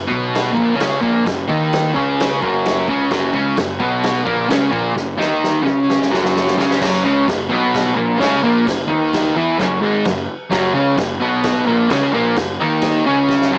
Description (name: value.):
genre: garage rock duo or trio.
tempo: 130 BPM.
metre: 4/4.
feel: straight.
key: F# mixolydian.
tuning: A4 = 440 Hz.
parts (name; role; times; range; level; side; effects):
fuzz guitar; riff; 0.0-13.6 s; F#2 to E4; -18 LUFS; equal; distortion, cassette tape.
fuzz picked electric bass; bass; 0.0-13.6 s; F#1 to E2; -25 LUFS; equal; overdrive, tube saturation.
vintage drum kit; drums; 0.1-13.5 s; crash cymbal, kick drum, snare drum; -25 LUFS; equal; none.
room: light reverb.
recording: home recording on cassette, small speaker sound.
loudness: -17 LUFS.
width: mono.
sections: 0.0-6.8 A section; 6.8-13.6 B section.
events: drum fill 5.0-6.8, 13.3.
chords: 0.0 F#.